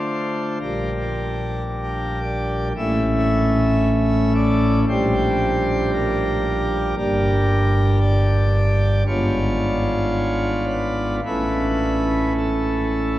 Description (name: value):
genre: classical, chorale-style piece for pipe organ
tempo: 56 BPM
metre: 4/4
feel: rubato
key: unclear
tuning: A4 = 440 Hz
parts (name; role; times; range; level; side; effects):
- pipe organ, principal chorus; solo; 0.0-13.2 s; G1 to E5; -18 LUFS; equal; none
room: wet cathedral reverb, RT60 5.0 s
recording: worn, warbling old tape, cassette tape, warbly pitch drift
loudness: -18 LUFS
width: side -15 dB against mid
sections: 0.0-13.2 A section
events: none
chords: 0.0 Dm; 0.6 Gm/Bb; 2.8 A; 4.9 Gm/Bb; 7.0 Gm; 9.1 G#dim7; 11.2 A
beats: 0.62 1.69 | 2.77 3.84 4.89 5.94 | 6.99 8.03 9.08 10.15 | 11.25 12.36